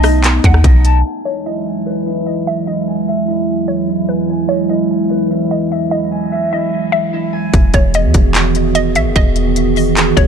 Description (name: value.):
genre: hip hop, atmospheric cloud-rap.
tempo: 148 BPM.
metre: 4/4.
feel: half-time.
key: E major.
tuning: A4 = 442 Hz.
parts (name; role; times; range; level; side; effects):
warbly tape-like pad; sustained chords; 0.0-10.3 s; E2 to G#4; -16 LUFS; right 3 dB; chorus, built-in reverb, sidechain pumping.
concert harp; arpeggios; 0.0-9.7 s; D#4 to A5; -23 LUFS; left 2 dB; low-pass filter, ping-pong delay.
soft 808-style bass; bass; 0.0-1.0, 7.5-10.3 s; E1 to E2; -13 LUFS; equal; none.
trap drum kit; drums; 0.0-0.9, 7.5-10.3 s; handclaps, hi-hat, kick drum, rim click; -13 LUFS; equal; none.
hollow square pluck; melody; 0.5-10.3 s; B4 to F#5; -21 LUFS; left 1 dB; chorus, low-pass filter, ping-pong delay.
room: light reverb.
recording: low-pass filter.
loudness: -12 LUFS.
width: side -7 dB against mid.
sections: 0.0-1.0 A section; 1.0-7.5 B section; 7.5-10.3 C section.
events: filter sweep 1.0-7.5.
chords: 0.0 B7; 1.0 Emaj7.